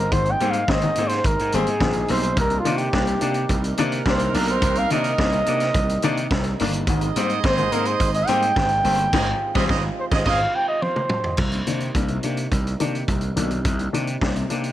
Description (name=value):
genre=disco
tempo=106 BPM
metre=4/4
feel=straight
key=C minor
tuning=A4 = 440 Hz
part: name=warm flugelhorn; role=melody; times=0.0-11.4 s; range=F4 to G5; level=-24 LUFS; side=right 1 dB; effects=analog delay
part: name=bright grand piano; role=accompaniment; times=0.0-14.6 s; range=Ab2 to D4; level=-26 LUFS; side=left 5 dB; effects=low-pass filter
part: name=warm French horn section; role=sustained chords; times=0.0-14.7 s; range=C3 to F4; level=-33 LUFS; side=right 5 dB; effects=low-pass filter
part: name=gritty slap bass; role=bass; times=0.0-14.7 s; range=G1 to C3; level=-25 LUFS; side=equal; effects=overdrive
part: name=vintage drum kit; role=drums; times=0.1-14.7 s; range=crash cymbal, hi-hat, kick drum, snare drum, toms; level=-26 LUFS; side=equal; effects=none
part: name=warm horn section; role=stabs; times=3.5-10.4 s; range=Eb4 to Eb5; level=-29 LUFS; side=right 8 dB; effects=none
room=small room reverb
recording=none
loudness=-19 LUFS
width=side -13 dB against mid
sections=0.0-11.4 A section; 11.4-14.7 B section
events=flugelhorn solo 0.0-11.4; band accent 9.1-11.4; drum fill 10.8-11.4; filter sweep 11.4-14.7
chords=0.0 Abmaj7; 2.4 Cm7; 6.9 Abmaj7; 11.4 Cm7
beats=| 0.12 0.68 1.24 1.81 | 2.37 2.93 3.50 4.06 | 4.62 5.19 5.75 6.31 | 6.88 7.44 8.00 8.56 | 9.13 9.69 10.25 10.82 | 11.38 11.95 12.51 13.08 | 13.65 14.21